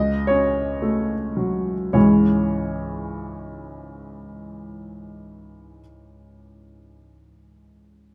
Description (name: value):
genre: classical, romantic character piece for solo piano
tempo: 50-70 BPM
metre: 2/4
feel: rubato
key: C# minor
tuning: A4 = 440 Hz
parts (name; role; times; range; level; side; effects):
- warm grand piano; solo; 0.0-8.1 s; C#2 to D#5; -23 LUFS; equal; none
room: light reverb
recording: none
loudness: -21 LUFS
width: mono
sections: 0.0-1.9 A section; 1.9-6.2 B section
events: slowing down 0.0-1.9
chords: 0.0 F#m/C#; 1.9 C#m